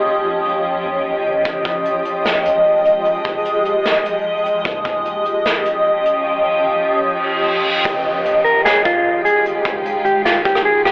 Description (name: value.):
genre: hip hop, atmospheric cloud-rap.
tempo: 150 BPM.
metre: 4/4.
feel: half-time.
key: F minor.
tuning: A4 = 439 Hz.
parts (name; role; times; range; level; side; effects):
granular cloud pad; sustained chords; 0.0-10.9 s; Eb3 to Eb5; -16 LUFS; equal; built-in reverb, phaser, cassette tape.
soft 808-style bass; bass; 0.0-10.8 s; F1 to Eb3; -43 LUFS; equal; none.
soft brush drum kit; drums; 1.5-10.9 s; hi-hat, kick drum, rim click, snare drum; -21 LUFS; equal; none.
reverse cymbal and downlifter; sound effects; 7.2-10.9 s; none; -24 LUFS; equal; none.
mellow electric guitar; melody; 8.4-10.9 s; F4 to Bb4; -14 LUFS; equal; low-pass filter, cassette tape, tape echo.
room: moderate spring reverb, RT60 1.7 s, studio reverb.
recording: home recording on cassette, telephone sound.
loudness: -14 LUFS.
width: side -29 dB against mid.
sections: 0.0-7.9 A section; 7.9-10.9 B section.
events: drums muted 6.3-7.9; reverse cymbal 7.2-7.9.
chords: 0.0 Eb9; 1.5 Fm9; 4.7 Eb9; 7.9 Fm9.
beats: 0.25 0.65 1.05 | 1.45 1.85 2.25 2.65 | 3.05 3.45 3.85 4.25 | 4.65 5.05 5.45 5.85 | 6.25 6.65 7.05 7.45 | 7.85 8.25 8.65 9.05 | 9.45 9.85 10.25 10.65.